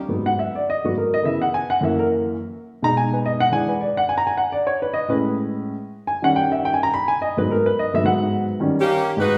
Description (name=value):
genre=jazz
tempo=212 BPM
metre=4/4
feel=swing 60% on 8ths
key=G# minor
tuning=A4 = 438 Hz
part: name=warm baby grand piano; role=accompaniment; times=0.1-9.4 s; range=F#2 to B5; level=-21 LUFS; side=equal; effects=none
part: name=bright saxophone section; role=melody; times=8.8-9.4 s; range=D#3 to B4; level=-22 LUFS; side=equal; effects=none
room=wet large studio reverb, RT60 1.4 s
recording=band playing live in one room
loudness=-21 LUFS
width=mono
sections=0.1-9.2 A section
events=grand piano solo 0.1-9.2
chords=0.1 G#m7; 1.2 C#m7; 1.8 F#7; 2.4 B6; 3.5 E7; 4.6 Amaj9; 5.8 D#7; 6.9 G#m7; 8.6 D#7